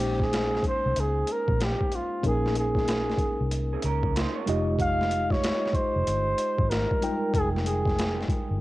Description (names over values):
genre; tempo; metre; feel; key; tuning
R&B, neo-soul; 94 BPM; 4/4; swing 63% on 16ths; F minor; A4 = 442 Hz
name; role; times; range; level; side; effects
trumpet with bucket mute; melody; 0.0-8.3 s; F4 to F5; -28 LUFS; equal; cassette tape
mellow tine electric piano; accompaniment; 0.0-8.6 s; G3 to G5; -31 LUFS; left 1 dB; medium stereo tremolo, cassette tape
vintage muted fingered electric bass; bass; 0.0-8.6 s; F1 to Db2; -29 LUFS; equal; none
boom bap sampler-style drum kit; drums; 0.0-8.5 s; hi-hat, kick drum, snare drum; -29 LUFS; equal; overdrive, cassette tape
electric guitar through a small old amp; second line; 3.7-4.7 s; C4 to Db5; -33 LUFS; right 7 dB; cassette tape
room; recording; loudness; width
light reverb; home recording on cassette; -24 LUFS; side -18 dB against mid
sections
0.0-8.6 A section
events
none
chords
0.0 Bbm11; 4.5 Fm9